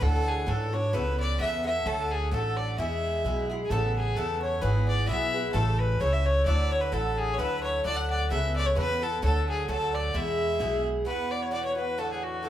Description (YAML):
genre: celtic folk, Celtic polka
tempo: 130 BPM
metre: 2/4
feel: swing 55% on 8ths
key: E mixolydian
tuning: A4 = 440 Hz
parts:
  - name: clear fiddle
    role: melody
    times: 0.0-12.5 s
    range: F#4 to F#5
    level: -30 LUFS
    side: equal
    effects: none
  - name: mellow accordion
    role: second line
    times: 0.0-12.5 s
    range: F#4 to F#5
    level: -33 LUFS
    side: left 4 dB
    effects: none
  - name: Irish bouzouki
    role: accompaniment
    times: 0.0-12.5 s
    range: A2 to A4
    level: -32 LUFS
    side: right 2 dB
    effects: none
  - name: upright bass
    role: bass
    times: 0.0-11.0 s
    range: G#1 to G#2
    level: -28 LUFS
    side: equal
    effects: none
  - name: pedal harmonium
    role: drone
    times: 11.1-12.5 s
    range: E2 to E3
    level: -41 LUFS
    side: left 4 dB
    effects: none
room: moderate large studio reverb, RT60 0.9 s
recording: band playing live in one room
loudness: -25 LUFS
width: side -11 dB against mid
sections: 0.0-3.7 A section; 3.7-11.1 A section; 11.1-12.5 B section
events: none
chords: 0.0 Dadd9; 0.9 Aadd9/C#; 1.9 D; 2.8 E; 3.7 Aadd9; 4.6 E/G#; 5.5 A; 6.5 Dadd9; 8.3 Aadd9/C#; 9.2 D; 10.1 E; 11.1 Esus2; 12.0 D